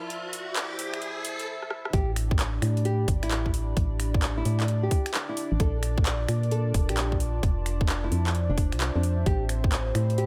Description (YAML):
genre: UK garage, two-step garage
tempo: 131 BPM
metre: 4/4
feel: swing 65% on 16ths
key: A minor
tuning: A4 = 439 Hz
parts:
  - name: warm analog pad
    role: sustained chords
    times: 0.0-10.3 s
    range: C4 to E5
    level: -41 LUFS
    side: equal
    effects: chorus, sidechain pumping
  - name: riser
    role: sound effects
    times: 0.0-1.5 s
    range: none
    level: -37 LUFS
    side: equal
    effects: none
  - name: warbly tape-like pad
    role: texture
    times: 0.0-10.3 s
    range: F3 to B5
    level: -41 LUFS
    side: equal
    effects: chorus, built-in reverb, sidechain pumping
  - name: garage drum kit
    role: drums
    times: 0.1-10.3 s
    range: finger snaps, handclaps, hi-hat, rim click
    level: -34 LUFS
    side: equal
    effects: none
  - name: nylon-string guitar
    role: melody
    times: 1.9-10.3 s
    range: D4 to A4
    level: -37 LUFS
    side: equal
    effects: digital delay
  - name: organ-like FM bass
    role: bass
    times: 1.9-10.3 s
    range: F1 to Bb2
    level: -29 LUFS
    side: equal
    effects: none
  - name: electronic kick drum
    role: drums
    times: 1.9-9.7 s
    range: none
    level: -28 LUFS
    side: equal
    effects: overdrive
room: digital ambience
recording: high-pass filter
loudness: -27 LUFS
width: mono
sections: 0.0-1.9 A section; 1.9-10.3 B section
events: build-up 0.0-1.9; riser 0.0-1.5; drum fill 1.6-1.9; drop 1.9-10.3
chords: 0.1 Fmaj7; 1.9 A9sus4; 5.6 Bbmaj7; 7.4 Fmaj7; 9.3 Am11